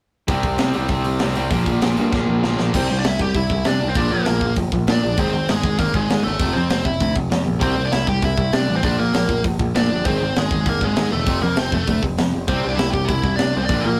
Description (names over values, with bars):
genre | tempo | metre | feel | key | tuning
punk rock | 197 BPM | 4/4 | straight | C mixolydian | A4 = 440 Hz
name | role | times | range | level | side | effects
crunchy overdriven guitar | riff | 0.3-2.7, 12.5-14.0 s | Bb2 to E4 | -28 LUFS | equal | none
overdriven semi-hollow guitar | riff | 0.3-14.0 s | F2 to C4 | -26 LUFS | equal | none
growling picked electric bass | bass | 0.3-14.0 s | E1 to C3 | -25 LUFS | equal | overdrive
tight metal drum kit | drums | 0.3-13.8 s | crash cymbal, hi-hat, kick drum, snare drum | -25 LUFS | equal | none
biting lead guitar | melody | 2.8-14.0 s | Ab3 to G5 | -25 LUFS | equal | overdrive
room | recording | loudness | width
light reverb | rough rehearsal-room recording, tube saturation | -19 LUFS | mono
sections
0.3-2.7 A section; 2.7-14.0 B section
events
drum fill 2.1-2.7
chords
0.3 C; 1.5 Bb; 2.7 C; 4.0 Bb; 5.2 Ab; 6.4 F; 7.6 C; 8.8 Bb; 10.1 Ab; 11.3 F; 12.5 C